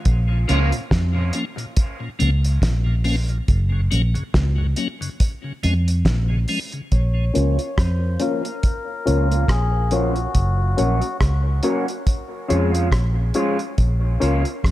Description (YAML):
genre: dub reggae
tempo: 70 BPM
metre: 4/4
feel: swing 55% on 16ths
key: Bb minor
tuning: A4 = 439 Hz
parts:
  - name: vintage muted fingered electric bass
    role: bass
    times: 0.1-14.7 s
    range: Gb1 to F2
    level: -19 LUFS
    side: equal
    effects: none
  - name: cloth-damped thuddy drum kit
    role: drums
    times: 0.1-14.7 s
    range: hi-hat, kick drum, rim click, snare drum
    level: -22 LUFS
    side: equal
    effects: none
  - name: tonewheel organ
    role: accompaniment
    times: 0.3-6.8 s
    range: Gb2 to Db4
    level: -28 LUFS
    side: left 2 dB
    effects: slow rotary speaker, dub echo
  - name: electric guitar at the edge of break-up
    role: accompaniment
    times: 0.5-0.7, 7.3-14.4 s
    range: F3 to Gb4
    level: -28 LUFS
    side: right 3 dB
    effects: wide subtle chorus, low-pass filter, dub echo
  - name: melodica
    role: melody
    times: 6.9-11.2 s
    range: Gb4 to Db5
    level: -30 LUFS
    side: left 3 dB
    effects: low-pass filter, dub echo
  - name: reed electric piano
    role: stabs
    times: 7.3-14.4 s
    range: Db4 to Db5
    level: -25 LUFS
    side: left 4 dB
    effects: low-pass filter, dub echo
room: small room ambience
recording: none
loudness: -18 LUFS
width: side -15 dB against mid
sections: 0.0-6.9 A section; 6.9-14.7 B section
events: break 0.0-6.9; filter sweep 6.9-14.7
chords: 0.1 Bbm; 3.5 Gb; 5.2 Db; 6.9 Bbm; 10.3 Gb; 12.1 Db; 13.8 Bbm